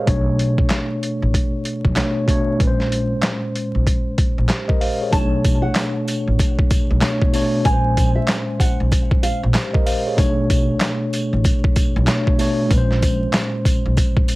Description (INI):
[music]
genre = hip hop, boom-bap hip-hop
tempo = 95 BPM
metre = 4/4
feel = swing 62% on 16ths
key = B minor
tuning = A4 = 440 Hz
[part]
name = mellow tine electric piano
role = accompaniment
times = 0.0-14.4 s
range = A#2 to E#5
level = -22 LUFS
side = equal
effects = medium stereo tremolo, cassette tape, high-pass filter, low-pass filter
[part]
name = upright bass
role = bass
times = 0.1-13.9 s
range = A1 to B1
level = -20 LUFS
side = equal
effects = none
[part]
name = boom bap sampler-style drum kit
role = drums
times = 0.1-14.4 s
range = handclaps, hi-hat, kick drum, snare drum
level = -18 LUFS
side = equal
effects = none
[part]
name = nylon-string guitar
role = melody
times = 5.1-9.4 s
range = E5 to A5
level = -26 LUFS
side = right 2 dB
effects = high-pass filter, low-pass filter, tape echo
[part]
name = sleigh bells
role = percussion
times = 5.1-14.4 s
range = none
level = -35 LUFS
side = right 3 dB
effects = none
[sound]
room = little or no reverb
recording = heavily compressed radio sound, vinyl crackle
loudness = -16 LUFS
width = side -20 dB against mid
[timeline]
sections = 0.0-5.1 A section; 5.1-14.4 B section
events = none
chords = 0.1 Bm9; 2.6 A#m9; 5.1 Bm9; 7.7 A#m9; 10.2 Bm9; 12.7 A#m9